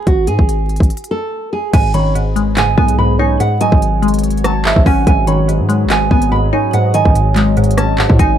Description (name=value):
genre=hip hop, drill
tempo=144 BPM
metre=4/4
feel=half-time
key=G# phrygian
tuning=A4 = 441 Hz
part: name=nylon-string guitar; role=melody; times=0.0-8.4 s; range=F#4 to B5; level=-18 LUFS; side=right 4 dB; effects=none
part: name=distorted 808-style bass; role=bass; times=0.1-8.4 s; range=F#1 to G#2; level=-16 LUFS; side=equal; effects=distortion
part: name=drill drum kit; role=drums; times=0.1-8.3 s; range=crash cymbal, handclaps, hi-hat, kick drum, rim click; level=-14 LUFS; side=equal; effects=none
part: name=glassy wavetable pluck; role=accompaniment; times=1.7-8.4 s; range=G#2 to D#4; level=-16 LUFS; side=left 2 dB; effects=chorus
part: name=deep dark ambient pad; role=sustained chords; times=2.3-8.4 s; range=F#3 to D#5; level=-23 LUFS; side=right 2 dB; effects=chorus, built-in reverb
part: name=soft octave-layered synth lead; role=second line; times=1.9-7.1 s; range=C#5 to F#5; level=-23 LUFS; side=right 4 dB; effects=chorus, ping-pong delay
room=little or no reverb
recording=vinyl crackle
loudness=-11 LUFS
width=side -10 dB against mid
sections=0.0-1.7 A section; 1.7-8.4 B section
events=break 0.9-1.7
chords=0.0 N.C.; 1.7 G#m; 3.4 F#madd9/G#; 5.1 G#m; 6.7 C#sus2/G#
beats=| 0.07 0.48 0.90 1.32 | 1.73 2.15 2.57 2.98 | 3.40 3.82 4.23 4.65 | 5.07 5.48 5.90 6.32 | 6.73 7.15 7.57 7.98